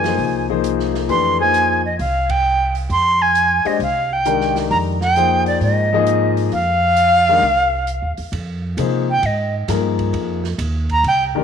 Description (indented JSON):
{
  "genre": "modal jazz",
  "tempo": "133 BPM",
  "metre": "4/4",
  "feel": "swing 67% on 8ths",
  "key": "F dorian",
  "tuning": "A4 = 439 Hz",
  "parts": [
    { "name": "bright reedy jazz flute", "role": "melody", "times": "0.0-11.2 s", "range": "D5 to C6", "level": "-16 LUFS", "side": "right 1 dB", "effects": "none" },
    { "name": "upright bass", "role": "bass", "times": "0.0-11.4 s", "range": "C2 to C3", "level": "-22 LUFS", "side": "right 1 dB", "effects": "none" },
    { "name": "open jazz drum kit", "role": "drums", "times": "0.0-11.4 s", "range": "hi-hat, kick drum, ride cymbal, snare drum", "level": "-33 LUFS", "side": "right 10 dB", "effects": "none" },
    { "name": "warm grand piano", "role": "accompaniment", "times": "0.1-11.4 s", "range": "Eb3 to Eb5", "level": "-20 LUFS", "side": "left 11 dB", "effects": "none" }
  ],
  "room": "moderate plate reverb, RT60 1.9 s, small room reverb",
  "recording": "1960s-style stereo with parts hard left and right",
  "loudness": "-15 LUFS",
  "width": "side -7 dB against mid",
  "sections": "0.0-8.3 A section; 8.3-11.4 B section",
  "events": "band accent 2.2; flute solo 8.3-11.4",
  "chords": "0.0 Fm11"
}